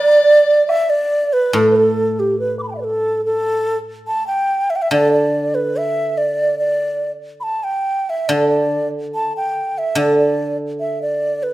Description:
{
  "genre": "chinese traditional, Chinese chamber ensemble",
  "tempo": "71 BPM",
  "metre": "2/4",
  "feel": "rubato",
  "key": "D zhi mode",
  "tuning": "A4 = 440 Hz",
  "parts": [
    { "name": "reedy xiao", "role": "melody", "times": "0.0-11.5 s", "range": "G4 to D6", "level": "-16 LUFS", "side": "right 1 dB", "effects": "none" },
    { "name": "mellow large dizi", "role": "second line", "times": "0.0-1.1 s", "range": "D5", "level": "-17 LUFS", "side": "right 2 dB", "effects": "none" },
    { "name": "guzheng", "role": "accompaniment", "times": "0.0-11.5 s", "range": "A2 to E3", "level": "-19 LUFS", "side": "right 1 dB", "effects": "none" },
    { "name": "woodblock", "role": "percussion", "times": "0.7-0.9 s", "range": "none", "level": "-33 LUFS", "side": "left 3 dB", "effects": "none" }
  ],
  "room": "moderate recital hall reverb, RT60 1.3 s",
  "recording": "none",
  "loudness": "-15 LUFS",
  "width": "side -16 dB against mid",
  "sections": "0.0-1.6 A section; 1.6-11.5 B section",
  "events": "none",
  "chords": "none"
}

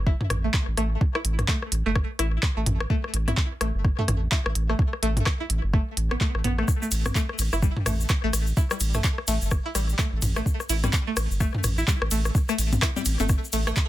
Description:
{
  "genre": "minimal techno",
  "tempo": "127 BPM",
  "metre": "4/4",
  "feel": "swing 60% on 16ths",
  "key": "unclear",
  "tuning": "A4 = 440 Hz",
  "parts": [
    { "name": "round analog bass", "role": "bass", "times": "0.0-13.7 s", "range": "G1 to A1", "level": "-26 LUFS", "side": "equal", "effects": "sidechain pumping" },
    { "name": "string-like resonator pluck", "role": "riff", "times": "0.1-13.7 s", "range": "G3 to E4", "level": "-31 LUFS", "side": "equal", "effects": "chorus, phaser, vintage 12-bit sampler grit, sidechain pumping, digital delay" },
    { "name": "electronic kick drum", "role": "drums", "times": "0.1-13.9 s", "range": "none", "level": "-23 LUFS", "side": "equal", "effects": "none" },
    { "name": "garage drum kit", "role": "percussion", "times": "0.2-13.7 s", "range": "congas, rim click, toms", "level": "-30 LUFS", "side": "left 2 dB", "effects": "soft clipping on snare, ping-pong delay" },
    { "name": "minimal click drum kit", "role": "drums", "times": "0.3-13.9 s", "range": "handclaps, hi-hat, ride cymbal", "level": "-29 LUFS", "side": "right 1 dB", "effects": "none" },
    { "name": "tube shaker", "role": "percussion", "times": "6.7-13.9 s", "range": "none", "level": "-34 LUFS", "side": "left 4 dB", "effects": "none" }
  ],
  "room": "light reverb",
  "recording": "dense, heavily limited modern master",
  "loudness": "-22 LUFS",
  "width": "side -15 dB against mid",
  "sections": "0.0-13.9 A section",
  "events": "none",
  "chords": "0.0 A5"
}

